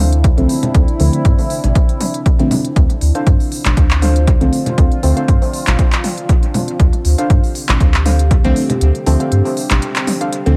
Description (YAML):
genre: dub techno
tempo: 119 BPM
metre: 4/4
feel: swing 54% on 16ths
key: D minor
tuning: A4 = 441 Hz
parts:
  - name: deep dark ambient pad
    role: sustained chords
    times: 0.0-10.6 s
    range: C4 to G4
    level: -26 LUFS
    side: equal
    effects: chorus, built-in reverb, sidechain pumping
  - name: warbly dusty pluck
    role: riff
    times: 0.0-0.1, 3.1-10.3 s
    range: D4 to F5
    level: -27 LUFS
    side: equal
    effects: lush chorus, sidechain pumping, dub echo
  - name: soft dub sub bass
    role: bass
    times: 0.0-10.5 s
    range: A1 to G2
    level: -16 LUFS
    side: equal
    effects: sidechain pumping
  - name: deep house drum kit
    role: drums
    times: 0.1-10.6 s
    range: handclaps, hi-hat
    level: -25 LUFS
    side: equal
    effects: dub echo
  - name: electronic kick drum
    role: drums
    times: 0.2-8.4 s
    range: none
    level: -15 LUFS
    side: equal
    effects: none
  - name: deep mellow chord stab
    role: stabs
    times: 0.4-5.2, 8.4-10.6 s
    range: D3 to C4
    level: -22 LUFS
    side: equal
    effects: chorus, phaser, sidechain pumping, dub echo
  - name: electronic congas and toms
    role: percussion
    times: 0.6-10.2 s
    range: none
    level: -25 LUFS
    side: equal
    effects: sidechain pumping on perc, sidechain pumping on toms, dub echo
room: light reverb, digital ambience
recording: none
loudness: -14 LUFS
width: mono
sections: 0.0-10.6 A section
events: kick drops out 8.8-10.6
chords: 0.0 Dm7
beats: 0.24 | 0.74 1.25 1.75 2.26 | 2.76 3.27 3.77 4.28 | 4.78 5.28 5.79 6.29 | 6.80 7.30 7.80 8.31 | 8.81 9.32 9.82 10.32